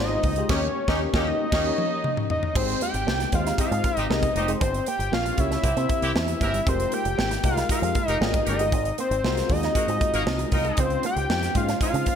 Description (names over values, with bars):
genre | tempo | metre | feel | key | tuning
polished 1980s jazz-funk pop | 117 BPM | 4/4 | straight | Ab major | A4 = 439 Hz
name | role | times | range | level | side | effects
fat analog lead | melody | 0.0-12.2 s | C5 to G5 | -26 LUFS | left 1 dB | chorus
FM electric piano | accompaniment | 0.0-12.2 s | Ab3 to Eb5 | -29 LUFS | left 3 dB | ensemble chorus
electric guitar with an envelope filter | riff | 0.0-12.2 s | G3 to Eb4 | -35 LUFS | right 10 dB | lush chorus
fingered electric bass with an envelope filter | bass | 0.0-12.0 s | F1 to Db3 | -28 LUFS | equal | none
modern studio drum kit | drums | 0.2-12.2 s | crash cymbal, hi-hat, kick drum, snare drum, toms | -26 LUFS | right 1 dB | gated reverb
warm horn section | second line | 0.5-11.9 s | Bb3 to Bb4 | -32 LUFS | equal | none
room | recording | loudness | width
light reverb, studio reverb | bright 1980s-style digital production | -21 LUFS | side -8 dB against mid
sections
0.0-2.6 A section; 2.6-12.2 B section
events
band accent 0.5-2.6; drum fill 1.5-2.6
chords
0.5 Eb7; 2.6 Abmaj7; 4.6 Gm7b5; 5.6 C7; 6.7 Fm11; 8.7 Ab13; 10.8 Dbmaj9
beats
| 0.50 1.01 1.52 2.04 | 2.55 3.07 3.58 4.10 | 4.61 5.12 5.64 6.15 | 6.67 7.18 7.70 8.21 | 8.72 9.24 9.75 10.27 | 10.78 11.29 11.81